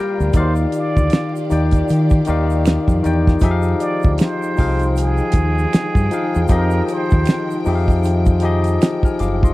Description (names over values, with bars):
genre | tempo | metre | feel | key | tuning
R&B, neo-soul | 78 BPM | 4/4 | swing 60% on 16ths | F dorian | A4 = 443 Hz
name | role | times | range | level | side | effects
trumpet with plunger mute | melody | 0.0-7.6 s | Ab4 to D5 | -25 LUFS | right 2 dB | none
barky tine electric piano | accompaniment | 0.0-9.5 s | Eb3 to F6 | -20 LUFS | left 3 dB | none
warm studio string section | sustained chords | 0.0-9.5 s | Eb3 to G5 | -30 LUFS | right 2 dB | none
deep dub fingered electric bass | bass | 0.2-9.5 s | Gb1 to Eb3 | -18 LUFS | equal | none
egg shaker and finger snaps | percussion | 0.2-9.5 s | none | -38 LUFS | right 11 dB | none
damped 70s drum kit | drums | 0.3-9.5 s | hi-hat, kick drum, snare drum | -16 LUFS | equal | none
room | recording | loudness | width
small room ambience | dry, close 1970s-style studio recording, vinyl crackle | -14 LUFS | side -18 dB against mid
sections
0.0-9.5 A section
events
none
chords
0.3 Ebmaj9; 3.4 Fm9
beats
| 0.34 1.11 1.88 2.65 | 3.42 4.19 4.96 5.72 | 6.49 7.26 8.03 8.80